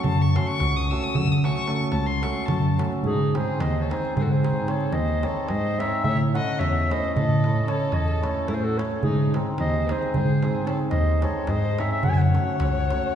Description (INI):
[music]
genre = balkan folk, Balkan wedding band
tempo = 220 BPM (eighths)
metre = 11/8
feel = straight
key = unclear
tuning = A4 = 440 Hz
[part]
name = dark violin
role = second line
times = 0.0-13.2 s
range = D#4 to E6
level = -31 LUFS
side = left 3 dB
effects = none
[part]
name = darbuka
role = percussion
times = 0.0-13.1 s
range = none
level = -26 LUFS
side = equal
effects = none
[part]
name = smooth gliding synth bass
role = bass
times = 0.1-12.9 s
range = C#2 to A2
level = -25 LUFS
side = equal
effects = none
[part]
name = hammered dulcimer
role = accompaniment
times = 0.3-13.1 s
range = G#3 to A4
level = -30 LUFS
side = right 2 dB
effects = none
[part]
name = dark clarinet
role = melody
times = 3.1-13.2 s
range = G#4 to G#5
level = -28 LUFS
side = equal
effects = none
[sound]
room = wet concert hall reverb, RT60 1.9 s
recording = heard from further back in the room, nothing above 10.7 kHz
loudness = -21 LUFS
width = side -9 dB against mid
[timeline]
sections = 0.0-3.0 A section; 3.0-13.2 B section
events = violin solo 0.0-3.0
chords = 0.0 F#m; 3.0 G#; 6.0 A; 9.0 G#; 12.0 F#m